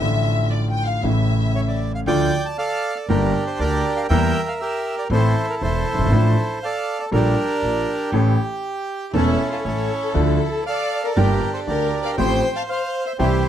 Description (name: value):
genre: tango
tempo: 118 BPM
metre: 4/4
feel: rubato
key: D minor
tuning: A4 = 439 Hz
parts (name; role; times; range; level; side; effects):
- warm studio violin section; second line; 0.0-1.8, 9.1-13.5 s; E4 to G5; -26 LUFS; left 4 dB; none
- warm concert grand piano; accompaniment; 0.0-13.4 s; E1 to A4; -22 LUFS; equal; none
- upright bass; bass; 0.0-13.4 s; E1 to E2; -21 LUFS; equal; none
- bandoneon; melody; 1.6-13.5 s; C#4 to A5; -23 LUFS; right 2 dB; none
room: light reverb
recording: none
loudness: -18 LUFS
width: side -10 dB against mid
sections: 0.0-2.1 A section; 2.1-13.5 B section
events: violin section solo 0.0-2.1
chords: 0.0 Dm/A; 1.0 A; 2.1 Dm; 3.1 Gm; 4.1 Edim; 5.1 Am; 6.1 Dm/A; 7.1 Gmadd9/Bb; 8.1 A; 10.2 Dm; 11.2 Gm; 12.2 Fadd9/A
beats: | 0.02 0.53 1.04 1.55 | 2.07 2.58 3.09 3.60 | 4.10 4.60 5.11 5.61 | 6.11 6.62 7.12 7.62 | 8.13 8.64 9.14 9.65 | 10.16 10.67 11.18 11.69 | 12.19 12.70 13.20